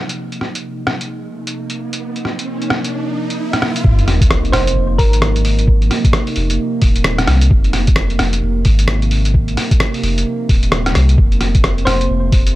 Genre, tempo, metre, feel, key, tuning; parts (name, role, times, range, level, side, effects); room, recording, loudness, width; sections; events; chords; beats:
future garage; 131 BPM; 4/4; swing 61% on 16ths; F minor; A4 = 440 Hz
warbly tape-like pad; sustained chords; 0.0-12.6 s; C3 to Eb4; -22 LUFS; right 2 dB; chorus, built-in reverb, vintage 12-bit sampler grit, sidechain pumping
downlifter, riser and sub drop; sound effects; 1.9-5.7 s; -24 LUFS; equal
lo-fi sampler-style drum kit; drums; 0.1-12.5 s; hi-hat, rim click; -19 LUFS; equal
warm sub bass; bass; 3.8-12.6 s; Eb1 to C2; -16 LUFS; equal; transformer saturation, sidechain pumping
electronic kick drum; drums; 3.8-12.4 s; -12 LUFS; equal
thumb-piano-like synth pluck; melody; 4.5-5.6, 11.9-12.1 s; Bb4 to C5; -21 LUFS; equal; chorus, analog delay
little or no reverb; dry, gritty hardware recording; -13 LUFS; side -16 dB against mid
0.0-3.8 A section; 3.8-12.6 B section
filter sweep on ambient pad 0.0-3.8; riser 1.9-3.8; impact 3.8-5.7
0.0 F5; 3.8 Fm7; 11.2 Bbsus2/F
| 0.18 0.64 1.10 1.56 | 2.01 2.47 2.93 3.39 | 3.85 4.30 4.76 5.22 | 5.68 6.14 6.59 7.05 | 7.51 7.97 8.43 8.88 | 9.34 9.80 10.26 10.72 | 11.18 11.63 12.09 12.55